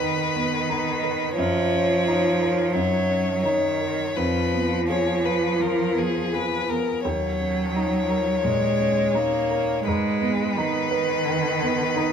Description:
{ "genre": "neoclassical piano and strings", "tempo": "85 BPM", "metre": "4/4", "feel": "rubato", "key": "Eb minor", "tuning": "A4 = 439 Hz", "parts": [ { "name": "clear violin", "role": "melody", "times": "0.0-12.1 s", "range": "Ab4 to Db5", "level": "-25 LUFS", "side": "left 6 dB", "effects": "none" }, { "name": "clear cello", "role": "second line", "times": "0.0-12.1 s", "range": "Eb3 to Bb3", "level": "-25 LUFS", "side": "right 3 dB", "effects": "none" }, { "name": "clear upright piano", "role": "accompaniment", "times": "0.0-12.1 s", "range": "Eb2 to Cb5", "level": "-26 LUFS", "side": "right 2 dB", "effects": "none" } ], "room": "wet plate reverb, RT60 2.8 s", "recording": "heard from further back in the room", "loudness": "-20 LUFS", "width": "side -7 dB against mid", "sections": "0.0-12.1 A section", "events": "none", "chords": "0.0 Abm; 1.4 Ebm7/Gb; 4.2 Fdim; 7.0 Ebm7; 9.9 Abm" }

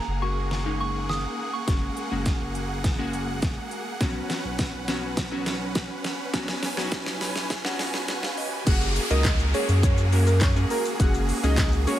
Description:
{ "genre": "dance-pop", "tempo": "103 BPM", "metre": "4/4", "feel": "straight", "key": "F# major", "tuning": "A4 = 441 Hz", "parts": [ { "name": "soft synth bell", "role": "melody", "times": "0.0-2.7 s", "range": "A#5 to D#6", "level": "-33 LUFS", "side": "equal", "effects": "chorus, ping-pong delay" }, { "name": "glassy digital keys", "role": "accompaniment", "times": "0.0-12.0 s", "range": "F#3 to B5", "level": "-31 LUFS", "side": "left 2 dB", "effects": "chorus" }, { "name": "supersaw chords", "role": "sustained chords", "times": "0.0-12.0 s", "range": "A#3 to G#5", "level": "-33 LUFS", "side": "right 2 dB", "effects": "sidechain pumping" }, { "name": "riser and downlifter", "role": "sound effects", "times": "1.6-12.0 s", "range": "none", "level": "-36 LUFS", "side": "equal", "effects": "none" }, { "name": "saturated sub bass", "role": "bass", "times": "0.1-11.9 s", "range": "F#1 to F#2", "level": "-26 LUFS", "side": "equal", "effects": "sidechain pumping" }, { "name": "pop drum kit", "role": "drums", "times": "0.5-12.0 s", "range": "crash cymbal, handclaps, hi-hat, kick drum, shaker, snare drum", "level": "-26 LUFS", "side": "equal", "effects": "none" }, { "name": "fat analog lead", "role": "melody", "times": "8.7-12.0 s", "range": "A#4 to F#5", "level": "-30 LUFS", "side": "right 3 dB", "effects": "phaser, sidechain pumping" } ], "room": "digital ambience", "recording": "high-pass filter", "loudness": "-23 LUFS", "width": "side -12 dB against mid", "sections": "0.0-8.7 A section; 8.7-12.0 B section", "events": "build-up 0.0-8.7; drum fill 0.0-8.7; filter sweep 0.0-8.7; synth keys fill 6.9-8.7; drop 8.7-12.0", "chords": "0.0 F#add9; 4.0 Bsus2; 8.7 F#add9" }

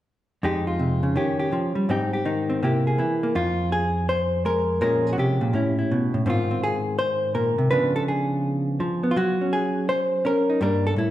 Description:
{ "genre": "solo jazz", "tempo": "165 BPM", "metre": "4/4", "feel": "swing 65% on 8ths", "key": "F minor", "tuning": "A4 = 440 Hz", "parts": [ { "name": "hollow-body jazz guitar", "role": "solo", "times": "0.4-11.1 s", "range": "F2 to C5", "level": "-21 LUFS", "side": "equal", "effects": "none" } ], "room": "wet large studio reverb, RT60 1.5 s", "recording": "band playing live in one room", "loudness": "-21 LUFS", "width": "side -13 dB against mid", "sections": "0.4-3.3 A section; 3.3-11.1 B section", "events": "none", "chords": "0.4 Fm9; 1.2 Eb7; 1.9 Abmaj7; 2.6 C7; 3.3 Fmadd11; 4.8 Bbm7; 5.5 A9; 6.3 Ab69; 7.7 Db7b9; 9.2 Gbadd9; 10.6 Gmadd9" }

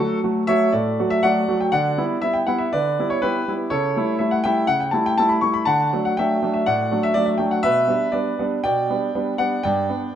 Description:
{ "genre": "classical-period piano sonatina", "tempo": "122 BPM", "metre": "4/4", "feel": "straight", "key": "D major", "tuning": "A4 = 443 Hz", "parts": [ { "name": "clear concert grand piano", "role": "solo", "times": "0.0-10.2 s", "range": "G2 to C#6", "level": "-18 LUFS", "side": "equal", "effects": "none" } ], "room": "moderate recital hall reverb, RT60 1.6 s", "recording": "close, detailed microphones", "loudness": "-18 LUFS", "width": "side -10 dB against mid", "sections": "0.0-10.2 A section", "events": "none", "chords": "0.0 D; 1.7 Em7/D; 3.7 A7/C#; 5.7 D; 7.6 G/B; 9.6 G" }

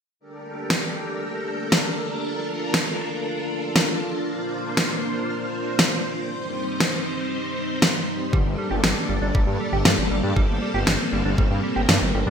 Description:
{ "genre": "synthwave", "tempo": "118 BPM", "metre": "4/4", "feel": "straight", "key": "G minor", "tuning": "A4 = 440 Hz", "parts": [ { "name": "string machine, full ensemble", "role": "sustained chords", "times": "0.2-12.3 s", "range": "G3 to C5", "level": "-26 LUFS", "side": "equal", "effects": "ensemble chorus, sidechain pumping" }, { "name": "electronic snare drum", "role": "drums", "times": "0.7-12.0 s", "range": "none", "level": "-22 LUFS", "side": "equal", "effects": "gated reverb" }, { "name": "mellow electric guitar", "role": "riff", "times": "8.3-12.3 s", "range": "G3 to G4", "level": "-30 LUFS", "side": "right 3 dB", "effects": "analog chorus, ping-pong delay" }, { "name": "wide detuned saw bass", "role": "bass", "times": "8.3-12.3 s", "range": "G1 to G2", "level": "-24 LUFS", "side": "equal", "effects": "chorus, sidechain pumping" }, { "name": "electronic kick drum", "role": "drums", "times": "8.3-11.5 s", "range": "none", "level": "-21 LUFS", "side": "equal", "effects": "none" } ], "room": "wet lush hall reverb, RT60 1.9 s, digital ambience", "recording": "bright 1980s-style digital production", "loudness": "-21 LUFS", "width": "side -7 dB against mid", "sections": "0.2-12.3 A section", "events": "none", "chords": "0.2 Gmadd9; 4.3 Bbadd9; 6.3 Cm; 8.3 Gmadd9" }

